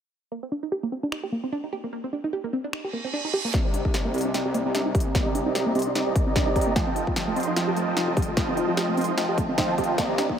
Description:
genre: future bass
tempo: 149 BPM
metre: 4/4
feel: swing 56% on 16ths, half-time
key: C minor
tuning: A4 = 440 Hz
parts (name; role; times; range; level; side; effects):
- wide unison pluck; arpeggios; 0.3-10.3 s; A3 to G4; -29 LUFS; right 2 dB; sidechain pumping, dub echo
- big-room dance drum kit; drums; 1.1-10.3 s; finger snaps, hi-hat, snare drum; -32 LUFS; left 1 dB; overdrive, high-pass filter on snare, high-pass filter on hats
- reverse cymbal and riser; sound effects; 2.9-10.4 s; none; -37 LUFS; right 1 dB; none
- supersaw chords; riff; 3.5-10.4 s; F3 to C6; -26 LUFS; right 1 dB; phaser, sidechain pumping, low-pass filter, dub echo
- wide detuned saw bass; bass; 3.5-10.4 s; F1 to F2; -31 LUFS; equal; chorus, sidechain pumping, high-pass filter
- electronic kick drum; drums; 3.5-10.4 s; none; -25 LUFS; left 1 dB; overdrive
room: light reverb, digital ambience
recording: high-pass filter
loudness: -23 LUFS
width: side -8 dB against mid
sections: 0.3-3.5 A section; 3.5-10.4 B section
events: filter sweep on synth arpeggio sound 0.3-3.5; kick drops out 1.9-3.5; reverse cymbal 2.9-3.5; build-up 3.5-10.4; drum fill 3.5-10.4; filter sweep on supersaw synth 3.5-10.4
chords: 0.3 Cm9; 6.8 F9

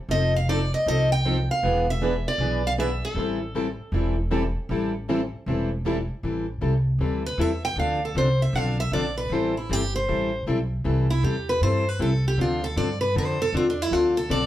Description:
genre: acoustic string swing (jazz manouche)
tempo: 156 BPM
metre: 4/4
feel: swing 64% on 8ths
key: A minor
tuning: A4 = 442 Hz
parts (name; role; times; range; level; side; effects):
- picked steel-string acoustic guitar; melody; 0.1-14.5 s; D4 to G5; -25 LUFS; right 1 dB; none
- picked plugged-in steel-string acoustic guitar; accompaniment; 0.1-14.4 s; D3 to A4; -28 LUFS; left 3 dB; none
- picked plugged-in steel-string acoustic guitar; accompaniment; 0.1-6.0 s; E3 to B4; -30 LUFS; right 3 dB; none
- upright bass; bass; 0.1-14.5 s; E1 to G2; -26 LUFS; equal; none
room: moderate studio reverb, RT60 0.6 s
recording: heard from further back in the room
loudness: -22 LUFS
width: side -13 dB against mid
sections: 0.0-6.2 A section; 6.2-14.5 B section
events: steel-string acoustic guitar solo 6.2-14.5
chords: 0.1 F7; 1.6 E7; 3.2 Am7; 7.8 Dm7; 9.3 Am7; 12.4 Dm7

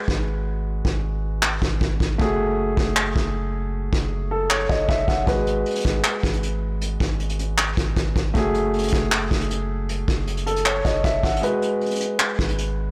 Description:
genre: hip hop, trap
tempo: 156 BPM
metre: 4/4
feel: half-time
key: G# phrygian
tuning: A4 = 440 Hz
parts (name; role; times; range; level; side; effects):
- dark baby grand piano; accompaniment; 0.0-12.9 s; G#3 to F#5; -27 LUFS; equal; low-pass filter
- long sustained 808-style bass; bass; 0.1-12.9 s; F#1 to G#1; -29 LUFS; equal; none
- vintage brush drum kit; drums; 0.1-12.7 s; handclaps, hi-hat, kick drum; -25 LUFS; equal; none
room: light reverb, small room ambience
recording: blown-out, overdriven recording, overdrive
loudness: -23 LUFS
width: mono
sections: 0.0-12.9 A section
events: break 0.0-5.3, 11.4-12.2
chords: 0.0 G#m7; 2.2 F#madd9; 5.3 G#m7; 8.3 F#madd9; 11.4 G#m7

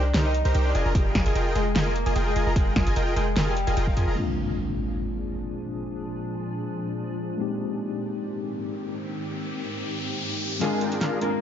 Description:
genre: future bass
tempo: 149 BPM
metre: 4/4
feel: half-time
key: unclear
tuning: A4 = 440 Hz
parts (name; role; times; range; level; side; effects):
- electric guitar at the edge of break-up; melody; 0.0-4.1, 10.6-11.4 s; F3 to Eb5; -30 LUFS; left 1 dB; sidechain pumping, digital delay
- supersaw chords; riff; 0.0-4.1, 10.6-11.3 s; D4 to Bb5; -28 LUFS; equal; sidechain pumping, low-pass filter
- warm 808-style bass; bass; 0.0-4.2 s; F1 to F2; -24 LUFS; equal; sidechain pumping
- pop drum kit; drums; 0.1-4.3, 10.6-11.3 s; crash cymbal, hi-hat, snare drum; -29 LUFS; equal; low-pass filter on hats, low-pass filter on snare, low-pass filter on cymbals
- electronic kick drum; drums; 0.9-3.9 s; none; -24 LUFS; equal; none
- mellow tine electric piano; accompaniment; 4.1-11.4 s; Ab3 to Bb4; -31 LUFS; left 3 dB; medium stereo tremolo, sidechain pumping, tape echo
- shimmering ambient pad; sustained chords; 5.0-11.4 s; Ab2 to Ab4; -33 LUFS; equal; chorus, built-in reverb, sidechain pumping
- impact and riser; sound effects; 4.2-11.4 s; none; -33 LUFS; equal; none
room: light reverb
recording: nothing above 7.5 kHz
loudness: -24 LUFS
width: side -10 dB against mid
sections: 0.0-4.2 A section; 4.2-10.6 B section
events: drop 0.0-4.2; impact 4.2-5.8; filter sweep on drum 4.2-10.6; riser 8.8-10.6, 10.6-11.4; drum fill 10.6-11.4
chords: 0.0 Cm7; 0.7 Fm11; 4.2 Bb7; 7.4 Abmaj7; 10.6 Bb7

